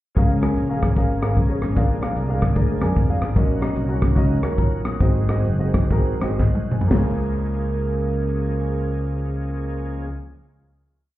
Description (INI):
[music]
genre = uptempo gospel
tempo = 113-151 BPM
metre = 4/4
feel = swing 64% on 8ths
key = Db major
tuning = A4 = 440 Hz
[part]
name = bright tonewheel organ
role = sustained chords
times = 0.1-10.1 s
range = Eb3 to Ab4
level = -31 LUFS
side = right 4 dB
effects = slow rotary speaker, overdrive, chorus vibrato
[part]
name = warm concert grand piano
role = accompaniment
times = 0.2-10.1 s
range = Db2 to Eb6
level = -26 LUFS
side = left 1 dB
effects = none
[part]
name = dark French horn section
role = sustained chords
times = 0.2-10.1 s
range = Db4 to D5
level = -34 LUFS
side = right 4 dB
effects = none
[part]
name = fingered electric bass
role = bass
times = 0.2-10.1 s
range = Gb1 to Bb2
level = -22 LUFS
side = equal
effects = none
[part]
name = tight funk drum kit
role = drums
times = 0.2-7.1 s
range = crash cymbal, hi-hat, kick drum, rim click, snare drum, toms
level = -20 LUFS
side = equal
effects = none
[sound]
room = light reverb, small room ambience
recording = heard muffled through a wall, club reverb, EQ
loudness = -18 LUFS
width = side -15 dB against mid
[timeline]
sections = 0.2-6.9 breakdown; 6.9-11.1 final chord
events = slowing down 3.4-6.9; drum fill 6.4-6.9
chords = 0.2 Db6; 1.8 Bb7; 3.4 Ebm7/Bb; 5.0 Ab7; 6.9 Db6